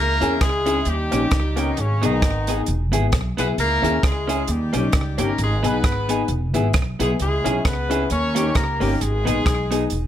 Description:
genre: ska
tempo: 133 BPM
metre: 4/4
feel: swing 56% on 8ths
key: C# dorian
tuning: A4 = 439 Hz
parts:
  - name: mellow horn section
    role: melody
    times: 0.0-9.9 s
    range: C#3 to C#5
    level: -24 LUFS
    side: left 1 dB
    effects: slapback echo
  - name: upright bass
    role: bass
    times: 0.0-10.1 s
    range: E1 to E2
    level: -23 LUFS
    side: equal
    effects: none
  - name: clean electric guitar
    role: accompaniment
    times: 0.2-9.8 s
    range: A#3 to G#4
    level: -28 LUFS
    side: right 5 dB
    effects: warbly pitch drift
  - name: dark upright piano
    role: stabs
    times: 0.2-9.9 s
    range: B3 to G#4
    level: -26 LUFS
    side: left 6 dB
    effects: slapback echo
  - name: compact cocktail drum kit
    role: drums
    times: 0.2-10.0 s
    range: hi-hat, kick drum, rim click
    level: -22 LUFS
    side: right 1 dB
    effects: slapback echo
room: light reverb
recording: none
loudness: -18 LUFS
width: side -11 dB against mid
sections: 0.0-10.1 A section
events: none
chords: 0.0 C#m; 0.9 D#7; 1.8 G#m; 2.7 E; 3.6 C#m; 4.5 D#7; 5.4 G#m; 6.3 E; 7.2 C#m; 8.1 D#7; 9.0 G#m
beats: 0.41 0.86 1.32 | 1.77 2.22 2.68 3.13 | 3.58 4.03 4.49 4.94 | 5.39 5.84 6.29 6.75 | 7.20 7.65 8.10 8.55 | 9.01 9.46 9.91

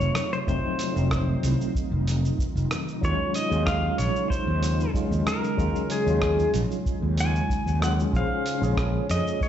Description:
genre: sunset chillout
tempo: 94 BPM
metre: 4/4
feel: straight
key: unclear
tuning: A4 = 443 Hz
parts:
  - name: pedal steel guitar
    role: melody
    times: 0.0-9.5 s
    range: Ab4 to Ab5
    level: -28 LUFS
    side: left 1 dB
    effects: digital delay
  - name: tine electric piano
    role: accompaniment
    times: 0.0-9.5 s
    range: C3 to Db5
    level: -30 LUFS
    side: moving between left 4 dB and right 6 dB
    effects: overdrive, fast stereo tremolo, auto-pan
  - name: ethereal airy pad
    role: sustained chords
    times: 0.0-9.5 s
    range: C3 to F4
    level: -33 LUFS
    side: equal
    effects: ensemble chorus, built-in reverb
  - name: fretless electric bass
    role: bass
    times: 0.0-9.2 s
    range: F1 to F2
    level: -25 LUFS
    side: equal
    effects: none
  - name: dusty soul sampler-style drum kit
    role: drums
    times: 0.0-9.5 s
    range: hi-hat, rim click, shaker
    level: -34 LUFS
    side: right 1 dB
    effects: none
  - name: electronic kick drum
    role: drums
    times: 0.5-9.5 s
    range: none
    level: -28 LUFS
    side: equal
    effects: none
room: moderate plate reverb, RT60 1.2 s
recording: played on a big sound system in a bare room, stone room reverb, nothing above 7.9 kHz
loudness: -22 LUFS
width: side -10 dB against mid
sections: 0.0-9.5 A section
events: none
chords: 0.0 F7b9; 3.0 Ebm11; 8.1 Bbm7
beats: | 0.48 1.11 1.75 2.39 | 3.03 3.67 4.30 4.94 | 5.58 6.22 6.86 7.50 | 8.13 8.77 9.41

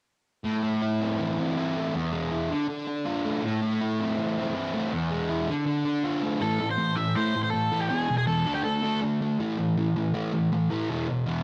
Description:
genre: rock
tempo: 161 BPM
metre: 4/4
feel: straight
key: A minor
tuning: A4 = 439 Hz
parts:
  - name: fuzz guitar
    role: riff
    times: 0.4-11.4 s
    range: E2 to F4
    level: -28 LUFS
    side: equal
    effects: distortion, cassette tape
  - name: octave-fuzz lead guitar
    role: melody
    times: 6.4-9.0 s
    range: G4 to E5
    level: -31 LUFS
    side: equal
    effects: distortion, cassette tape, tape echo
room: light reverb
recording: home recording on cassette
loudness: -27 LUFS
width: mono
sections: 0.4-6.4 A section; 6.4-11.4 B section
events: none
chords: 0.4 Am; 1.9 E; 2.5 Dm; 3.4 Am; 4.9 E; 5.5 Dm; 6.4 A5; 7.9 E; 8.5 D5; 9.4 A5; 10.9 E5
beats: | 0.44 0.81 1.19 1.56 | 1.94 2.31 2.69 3.06 | 3.43 3.81 4.18 4.55 | 4.93 5.30 5.67 6.04 | 6.42 6.79 7.16 7.54 | 7.91 8.28 8.65 9.02 | 9.40 9.77 10.14 10.51 | 10.89 11.26

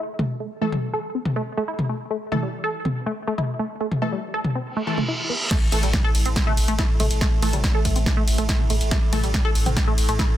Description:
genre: driving peak-time techno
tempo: 141 BPM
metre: 4/4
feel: straight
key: unclear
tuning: A4 = 435 Hz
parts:
  - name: tight sequenced synth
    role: riff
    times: 0.2-10.2 s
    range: G3 to A4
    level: -27 LUFS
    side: right 1 dB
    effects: chorus, vintage 12-bit sampler grit, sidechain pumping, tape echo
  - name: punchy analog drum machine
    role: drums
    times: 0.2-10.3 s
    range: crash cymbal, hi-hat, ride cymbal, snare drum, toms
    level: -26 LUFS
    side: left 1 dB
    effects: sidechain pumping on toms, sidechain pumping on hats, sidechain pumping on cymbals
  - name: rave stab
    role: stabs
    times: 0.6-9.2 s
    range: E3 to A4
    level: -31 LUFS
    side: left 2 dB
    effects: chorus, built-in reverb, sidechain pumping, dub echo
  - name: reverse cymbal and impact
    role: sound effects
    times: 4.8-7.2 s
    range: none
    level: -29 LUFS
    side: right 1 dB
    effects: none
  - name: overtone-sweeping drone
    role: drone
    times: 5.9-10.4 s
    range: A2 to A3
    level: -32 LUFS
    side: equal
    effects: chorus, built-in reverb, sidechain pumping
  - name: electronic kick drum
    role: drums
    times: 5.5-10.3 s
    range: none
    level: -21 LUFS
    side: equal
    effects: none
  - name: saturated sub bass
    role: bass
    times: 5.7-10.2 s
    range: A1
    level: -23 LUFS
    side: equal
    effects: tube saturation, sidechain pumping, low-pass filter
room: little or no reverb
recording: dense, heavily limited modern master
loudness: -20 LUFS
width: side -12 dB against mid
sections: 0.0-5.5 A section; 5.5-10.4 B section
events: reverse cymbal 4.8-5.5; drop 5.5-10.4; impact 5.5-7.2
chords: 0.0 A5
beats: | 0.40 0.83 1.25 1.68 | 2.10 2.53 2.96 3.38 | 3.81 4.23 4.66 5.08 | 5.51 5.93 6.36 6.79 | 7.21 7.64 8.06 8.49 | 8.91 9.34 9.77 10.19

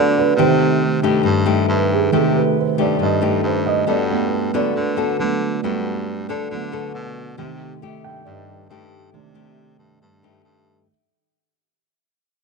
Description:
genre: bossa nova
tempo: 137 BPM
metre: 4/4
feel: straight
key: unclear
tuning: A4 = 437 Hz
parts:
  - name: dark concert grand piano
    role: accompaniment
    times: 0.0-10.9 s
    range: Eb3 to G5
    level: -20 LUFS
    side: right 11 dB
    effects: none
  - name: nylon-string guitar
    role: accompaniment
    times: 0.0-10.9 s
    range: G2 to A4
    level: -21 LUFS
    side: left 8 dB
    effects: none
  - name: breathy baritone saxophone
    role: bass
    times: 0.0-10.9 s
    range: G2 to D3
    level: -24 LUFS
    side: equal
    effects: none
room: moderate echo chamber reverb, RT60 2.2 s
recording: 1960s-style stereo with parts hard left and right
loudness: -16 LUFS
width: side -3 dB against mid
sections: 0.0-10.9 A section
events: fade-out 0.0-10.9; grand piano solo 0.0-10.9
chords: 0.4 Cm6; 3.9 Gmaj9; 7.4 Cm6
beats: | 0.37 0.81 1.25 1.68 | 2.12 2.56 3.00 3.44 | 3.87 4.31 4.75 5.19 | 5.63 6.07 6.50 6.94 | 7.38 7.82 8.26 8.70 | 9.13 9.57 10.01 10.45

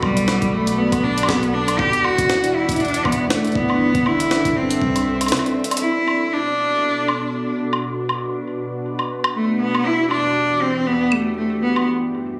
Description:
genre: IDM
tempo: 119 BPM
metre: 4/4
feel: swing 56% on 16ths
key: B phrygian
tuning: A4 = 441 Hz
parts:
  - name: clear cello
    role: melody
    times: 0.0-11.9 s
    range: G3 to G4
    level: -22 LUFS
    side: equal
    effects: dub echo
  - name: warbly tape-like pad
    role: sustained chords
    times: 0.0-12.4 s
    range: E2 to B5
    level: -27 LUFS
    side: equal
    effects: chorus, built-in reverb, phaser
  - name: warm sub bass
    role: bass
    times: 0.0-5.3 s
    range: E1 to C2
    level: -30 LUFS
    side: equal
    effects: tube saturation
  - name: electronic kick drum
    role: drums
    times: 0.0-4.9 s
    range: none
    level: -28 LUFS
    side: equal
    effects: none
  - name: jungle sampler-style drum kit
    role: drums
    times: 0.0-11.9 s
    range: hi-hat, snare drum, woodblock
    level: -26 LUFS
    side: equal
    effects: none
room: moderate digital room reverb, RT60 1.3 s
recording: recorded on a phone in the room, club reverb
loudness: -20 LUFS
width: mono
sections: 0.0-5.8 A section; 5.8-12.4 B section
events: band accent 5.3; drum fill 5.6; filter sweep on ambient pad 5.8-12.4; break 11.9-12.4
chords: 0.0 Bm7; 1.8 E7sus2; 3.8 G6; 4.8 C6; 5.8 Bm7; 9.9 Em7; 11.9 G6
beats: 0.28 0.78 1.29 | 1.79 2.29 2.80 3.30 | 3.81 4.31 4.82 5.32 | 5.82 6.33 6.83 7.34 | 7.84 8.35 8.85 9.35 | 9.86 10.36 10.87 11.37 | 11.88 12.38

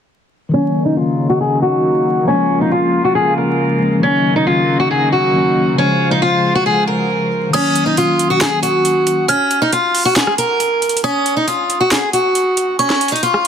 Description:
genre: hip hop, trap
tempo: 137 BPM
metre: 4/4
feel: half-time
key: Eb dorian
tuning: A4 = 440 Hz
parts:
  - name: picked steel-string acoustic guitar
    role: melody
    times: 0.5-13.5 s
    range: Db4 to Bb4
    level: -14 LUFS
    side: equal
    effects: low-pass filter
  - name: tine electric piano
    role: accompaniment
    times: 0.5-9.3 s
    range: Db3 to C5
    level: -18 LUFS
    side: left 3 dB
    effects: medium tremolo, low-pass filter
  - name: dark symphonic string section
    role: sustained chords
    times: 0.5-7.5 s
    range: Db3 to C5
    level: -21 LUFS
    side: right 1 dB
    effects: low-pass filter
  - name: glassy synth bell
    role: second line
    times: 7.5-13.5 s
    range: Db6 to F6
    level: -22 LUFS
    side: right 3 dB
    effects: chorus, digital delay
  - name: trap drum kit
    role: drums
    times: 7.5-13.5 s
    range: crash cymbal, handclaps, hi-hat, rim click, snare drum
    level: -19 LUFS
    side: right 2 dB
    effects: none
room: light reverb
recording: dense, heavily limited modern master, vinyl crackle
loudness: -12 LUFS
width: side -8 dB against mid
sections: 0.5-7.5 A section; 7.5-13.5 B section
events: filter sweep 0.5-7.5; kick muted 7.5-13.5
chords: 0.5 Ebm7; 2.3 Bbm7; 4.0 Ebm7; 5.8 Dbmaj7; 7.5 Ebm7; 9.3 N.C.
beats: | 0.53 0.97 1.40 1.84 | 2.28 2.72 3.16 3.59 | 4.03 4.47 4.91 5.35 | 5.78 6.22 6.66 7.10 | 7.54 7.97 8.41 8.85 | 9.29 9.73 10.16 10.60 | 11.04 11.48 11.91 12.35 | 12.79 13.23

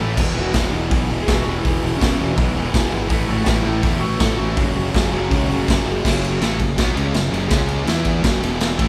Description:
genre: garage rock duo or trio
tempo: 164 BPM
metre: 4/4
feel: straight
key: F# minor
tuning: A4 = 440 Hz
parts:
  - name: fuzz guitar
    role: riff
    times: 0.0-8.9 s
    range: E2 to E4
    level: -25 LUFS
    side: equal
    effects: distortion
  - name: fuzz fingered electric bass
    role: bass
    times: 0.0-8.9 s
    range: E1 to E2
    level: -26 LUFS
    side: equal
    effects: overdrive
  - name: raw garage drum kit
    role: drums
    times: 0.2-8.9 s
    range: crash cymbal, hi-hat, kick drum, ride cymbal, snare drum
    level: -22 LUFS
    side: equal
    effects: none
  - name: clean lap steel guitar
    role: melody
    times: 0.4-5.8 s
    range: B3 to A4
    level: -29 LUFS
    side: equal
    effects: none
room: moderate studio reverb, RT60 0.8 s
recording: band playing live in one room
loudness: -19 LUFS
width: mono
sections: 0.0-6.0 A section; 6.0-8.9 B section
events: none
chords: 0.2 E5; 3.1 A5; 4.6 F#5; 6.0 F#m; 7.5 C#5; 7.9 E5; 8.2 F#5; 8.4 E5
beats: | 0.17 0.54 0.91 1.27 | 1.64 2.01 2.38 2.74 | 3.11 3.48 3.84 4.21 | 4.58 4.94 5.31 5.67 | 6.04 6.41 6.78 7.14 | 7.51 7.88 8.24 8.61

